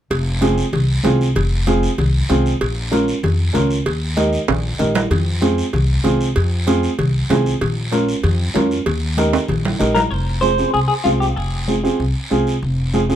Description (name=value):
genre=latin, cumbia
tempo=192 BPM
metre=4/4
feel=straight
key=F minor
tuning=A4 = 441 Hz
part: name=upright bass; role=bass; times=0.1-13.1 s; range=F1 to F2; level=-19 LUFS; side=equal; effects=none
part: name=congas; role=percussion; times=0.1-13.1 s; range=none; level=-24 LUFS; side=left 3 dB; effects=none
part: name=cowbell and timbales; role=percussion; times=0.1-10.0 s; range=none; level=-24 LUFS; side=right 2 dB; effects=none
part: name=guiro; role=percussion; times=0.1-13.2 s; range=none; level=-30 LUFS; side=right 1 dB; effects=none
part: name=dark upright piano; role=accompaniment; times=0.4-13.2 s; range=C4 to Bb4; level=-19 LUFS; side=right 2 dB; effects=none
part: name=clean electric guitar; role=melody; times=9.9-12.0 s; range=F4 to C5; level=-19 LUFS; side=left 1 dB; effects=spring reverb
room=little or no reverb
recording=close, detailed microphones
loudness=-15 LUFS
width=side -11 dB against mid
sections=0.1-10.1 A section; 10.1-13.2 B section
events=drum fill 4.5-5.1, 9.3-10.1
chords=0.1 Fm; 2.6 Bbm; 3.9 Eb; 5.1 Fm; 7.6 Bbm; 8.9 Eb; 10.1 Fm